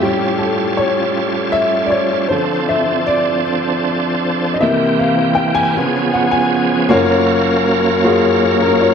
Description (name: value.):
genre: slow gospel.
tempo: 52 BPM (dotted quarters).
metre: 6/8.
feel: straight.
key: unclear.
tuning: A4 = 437 Hz.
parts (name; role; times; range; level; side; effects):
warm upright piano; accompaniment; 0.0-8.9 s; F#1 to Ab5; -15 LUFS; left 2 dB; none.
bright tonewheel organ; sustained chords; 0.0-8.9 s; E3 to E#5; -17 LUFS; right 2 dB; slow rotary speaker, chorus vibrato.
room: wet lush hall reverb, RT60 2.3 s.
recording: dreamy mix soaked in reverb.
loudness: -13 LUFS.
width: side -7 dB against mid.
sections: 0.0-6.9 A section; 6.9-8.9 B section.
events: upright piano solo 0.0-6.9.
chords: 0.0 A7b13; 2.3 Dm7; 4.6 C7; 5.8 Db7; 6.9 F#maj7.